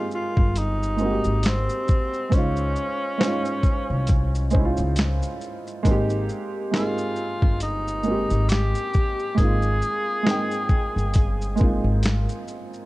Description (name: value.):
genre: lo-fi hip hop.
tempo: 68 BPM.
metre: 4/4.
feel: swing 56% on 16ths.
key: Ab major.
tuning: A4 = 441 Hz.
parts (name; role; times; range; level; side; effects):
breathy tenor saxophone; melody; 0.0-12.0 s; C4 to Ab4; -28 LUFS; equal; tape echo.
warm upright piano; accompaniment; 0.0-12.9 s; Ab3 to G5; -27 LUFS; right 2 dB; cassette tape.
dusty soul sampler-style drum kit; drums; 0.1-12.9 s; handclaps, hi-hat, kick drum, shaker, snare drum; -22 LUFS; equal; vintage 12-bit sampler grit.
upright bass; bass; 0.4-12.3 s; G1 to Db2; -24 LUFS; equal; none.
room: little or no reverb.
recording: cassette tape.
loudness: -20 LUFS.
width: side -18 dB against mid.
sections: 0.0-12.9 A section.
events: none.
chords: 0.0 Abmaj9; 2.3 Dbmaj9; 5.8 Abmaj9; 9.4 Ab69.